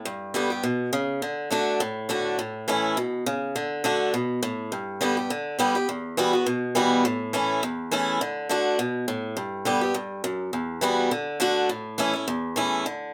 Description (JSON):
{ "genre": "bluegrass", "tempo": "206 BPM", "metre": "4/4", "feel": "swing 55% on 8ths", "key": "unclear", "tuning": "A4 = 439 Hz", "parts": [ { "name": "picked swing-style acoustic guitar", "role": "solo", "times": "0.0-13.1 s", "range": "E2 to G4", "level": "-26 LUFS", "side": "equal", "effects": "none" } ], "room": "moderate small room ambience, RT60 0.5 s", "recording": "none", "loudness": "-26 LUFS", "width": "mono", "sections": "0.0-2.4 A section; 2.4-11.7 B section; 11.7-13.1 B section", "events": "none", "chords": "0.1 G; 1.2 D; 2.4 A; 3.6 D; 4.7 G; 5.9 Emadd9; 7.0 A; 8.2 D; 9.4 G; 10.5 Emadd9; 11.1 D; 11.7 A" }